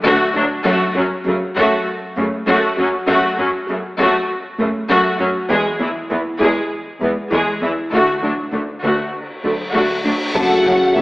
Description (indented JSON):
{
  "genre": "cinematic, hybrid orchestral and electronic film score",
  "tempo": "99 BPM",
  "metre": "4/4",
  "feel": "straight",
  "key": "F# minor",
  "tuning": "A4 = 440 Hz",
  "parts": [
    { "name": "harp-like synth pluck", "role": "arpeggios", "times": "0.0-11.0 s", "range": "D3 to F#4", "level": "-26 LUFS", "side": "equal", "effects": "chorus, digital delay" },
    { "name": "rich symphonic viola section", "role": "accompaniment", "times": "0.1-11.0 s", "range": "C#3 to G#4", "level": "-17 LUFS", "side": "equal", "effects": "none" },
    { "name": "clear symphonic cello section", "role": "bass", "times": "0.1-11.0 s", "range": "D2 to F#2", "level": "-22 LUFS", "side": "equal", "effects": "none" },
    { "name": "cymbal swell and sub drop", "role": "sound effects", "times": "8.7-11.0 s", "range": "none", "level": "-26 LUFS", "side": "equal", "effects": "none" },
    { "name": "clear studio violin section", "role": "melody", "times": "10.3-11.0 s", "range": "G#5 to A5", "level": "-25 LUFS", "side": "left 1 dB", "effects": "none" },
    { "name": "rich symphonic violin section", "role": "second line", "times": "10.4-11.0 s", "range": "E5 to F#5", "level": "-20 LUFS", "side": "left 1 dB", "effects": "none" },
    { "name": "bright trombone section", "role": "sustained chords", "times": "10.4-11.0 s", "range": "C#3 to F#3", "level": "-23 LUFS", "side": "right 1 dB", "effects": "none" },
    { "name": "mellow French horn section", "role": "sustained chords", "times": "10.4-11.0 s", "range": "E4 to F#4", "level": "-15 LUFS", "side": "left 1 dB", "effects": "none" },
    { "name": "rich symphonic double bass section", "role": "bass", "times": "10.4-11.0 s", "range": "F#1", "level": "-29 LUFS", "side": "equal", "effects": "none" },
    { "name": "taiko ensemble", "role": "drums", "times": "10.4-10.9 s", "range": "none", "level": "-30 LUFS", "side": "left 1 dB", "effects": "none" }
  ],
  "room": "moderate scoring stage reverb, RT60 1.9 s",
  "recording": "AM radio sound",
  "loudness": "-15 LUFS",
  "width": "side -20 dB against mid",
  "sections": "0.0-10.4 A section",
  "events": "build-up 0.0-10.4; cymbal swell 8.7-10.4; impact 10.4-11.0",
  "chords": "0.0 D; 0.7 F#m; 5.5 E; 7.9 D; 10.4 F#m"
}